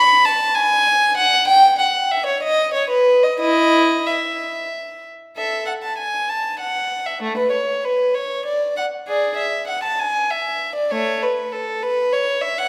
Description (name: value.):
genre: classical, baroque-style suite movement for unaccompanied violin.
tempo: 97 BPM.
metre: 3/4.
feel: rubato.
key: E major, A major from 5.4 s.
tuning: A4 = 440 Hz.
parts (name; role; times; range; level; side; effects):
rich violin; solo; 0.0-12.7 s; A3 to B5; -19 LUFS; equal; none.
room: wet recital hall reverb, RT60 1.7 s.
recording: recorded in a church or concert hall.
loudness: -19 LUFS.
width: mono.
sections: 0.0-5.4 A section; 5.4-12.7 A section.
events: none.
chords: none.